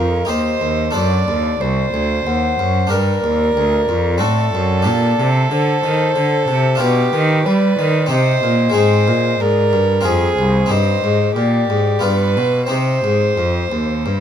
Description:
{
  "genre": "classical, baroque-style sonata movement with continuo",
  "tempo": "92 BPM",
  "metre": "3/4",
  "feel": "straight",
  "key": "G minor, C minor from 6.8 s",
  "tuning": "A4 = 440 Hz",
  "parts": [
    { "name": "mellow hollow baroque flute", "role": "melody", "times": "0.0-14.2 s", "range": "B4 to F#5", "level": "-22 LUFS", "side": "left 6 dB", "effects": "none" },
    { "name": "rich violin", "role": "second line", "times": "0.0-14.2 s", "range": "G4 to D5", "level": "-20 LUFS", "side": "right 5 dB", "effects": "none" },
    { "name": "harpsichord", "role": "accompaniment", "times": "0.0-14.2 s", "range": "C2 to C5", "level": "-21 LUFS", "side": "left 4 dB", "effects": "none" },
    { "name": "rich cello", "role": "bass", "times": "0.0-14.2 s", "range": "C2 to G3", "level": "-17 LUFS", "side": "right 1 dB", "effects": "none" }
  ],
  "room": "light reverb",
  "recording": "close, detailed microphones",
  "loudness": "-14 LUFS",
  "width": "side -9 dB against mid",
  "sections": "0.0-14.2 A section",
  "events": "none",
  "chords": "0.3 Cm/Eb; 0.9 D7; 2.9 Gm; 4.2 F#dim/A; 4.9 Gm/Bb; 6.8 G7/B; 8.1 Cm; 8.8 Ab; 10.1 Fm; 10.7 Cm/G; 12.0 G7; 12.7 Cm",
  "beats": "0.29 | 0.95 1.60 2.26 | 2.92 3.57 4.22 | 4.87 5.52 6.16 | 6.81 7.46 8.11 | 8.76 9.40 10.05 | 10.71 11.36 12.03 | 12.70 13.38 14.06"
}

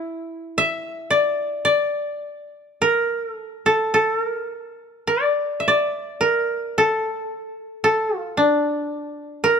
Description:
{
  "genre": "japanese traditional",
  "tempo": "51-57 BPM",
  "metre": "2/4",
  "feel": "rubato",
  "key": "unclear",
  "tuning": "A4 = 440 Hz",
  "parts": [
    { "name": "koto", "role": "solo", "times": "0.0-9.6 s", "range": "D4 to E5", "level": "-19 LUFS", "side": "equal", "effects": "none" }
  ],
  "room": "light reverb",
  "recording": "close, detailed microphones",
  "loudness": "-19 LUFS",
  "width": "side -6 dB against mid",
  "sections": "0.0-9.6 A section",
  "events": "none",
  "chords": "none",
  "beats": "| 0.59 1.67 | 2.79 3.93 | 5.08 6.22 | 7.30 8.37 | 9.44"
}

